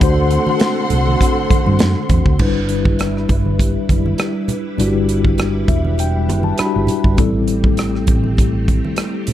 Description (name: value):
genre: lush 1970s-style soul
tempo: 100 BPM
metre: 4/4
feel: swing 54% on 16ths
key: G major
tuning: A4 = 440 Hz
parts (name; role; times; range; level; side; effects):
- dark studio string section; second line; 0.0-2.4 s; A4 to C6; -21 LUFS; equal; none
- mellow tine electric piano; accompaniment; 0.0-9.3 s; G3 to B5; -20 LUFS; left 4 dB; medium stereo tremolo
- soft string machine; sustained chords; 0.0-9.3 s; D3 to B4; -25 LUFS; right 1 dB; ensemble chorus
- hollow-body short-scale fingered electric bass; bass; 0.0-8.8 s; E1 to G2; -18 LUFS; equal; none
- modern studio drum kit; drums; 0.0-9.3 s; crash cymbal, hi-hat, kick drum, rim click, snare drum; -17 LUFS; equal; none
- congas; percussion; 0.0-9.3 s; none; -25 LUFS; right 4 dB; none
room: little or no reverb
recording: dark, warm production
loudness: -14 LUFS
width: side -12 dB against mid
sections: 0.0-2.4 A section; 2.4-9.3 B section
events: tine electric piano fill 5.4-7.2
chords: 0.0 D7; 2.4 G6; 7.2 Am7